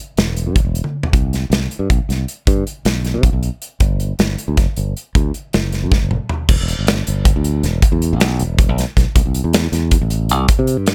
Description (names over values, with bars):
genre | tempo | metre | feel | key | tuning
math rock and midwest emo | 314 BPM (eighths) | 7/8 | straight | unclear | A4 = 439 Hz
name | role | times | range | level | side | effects
modern bright fingered electric bass | bass | 0.2-10.9 s | E1 to C3 | -20 LUFS | equal | none
modern studio drum kit | drums | 0.2-10.9 s | crash cymbal, hi-hat, kick drum, snare drum, toms | -18 LUFS | equal | none
room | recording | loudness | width
little or no reverb | none | -17 LUFS | mono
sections
0.0-6.5 A section; 6.5-10.9 B section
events
drum fill 0.8, 5.9-6.5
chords
none